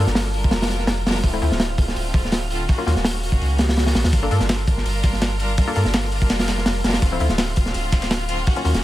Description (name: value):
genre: drum and bass, jungle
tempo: 166 BPM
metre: 4/4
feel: swing 53% on 16ths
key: G minor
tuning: A4 = 439 Hz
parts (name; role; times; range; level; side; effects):
- bright chamber string section; sustained chords; 0.0-8.8 s; D3 to Bb4; -28 LUFS; equal; vintage 12-bit sampler grit
- filtered dub chord stab; stabs; 0.0-8.7 s; F3 to A4; -28 LUFS; left 3 dB; chorus, dub echo
- soft dub sub bass; bass; 0.0-8.8 s; D1 to G2; -22 LUFS; equal; none
- wind-like tuned noise texture; texture; 0.0-8.8 s; F5; -34 LUFS; left 1 dB; built-in reverb
- crunchy breakbeat drum kit; drums; 0.1-8.8 s; hi-hat, kick drum, snare drum; -20 LUFS; equal; none
- swell; sound effects; 3.5-4.1 s; none; -33 LUFS; left 1 dB; none
- breakbeat sampler-style drum kit; drums; 4.1-8.8 s; hi-hat, snare drum; -32 LUFS; left 1 dB; high-pass filter on hats, high-pass filter on snare, high-pass filter on room
room: small room ambience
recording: none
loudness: -18 LUFS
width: side -15 dB against mid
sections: 0.0-8.8 A section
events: swell 3.5-4.1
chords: 0.0 Gm7; 1.2 Dm7; 2.7 Ebm7; 4.1 Gm7; 7.0 Dm7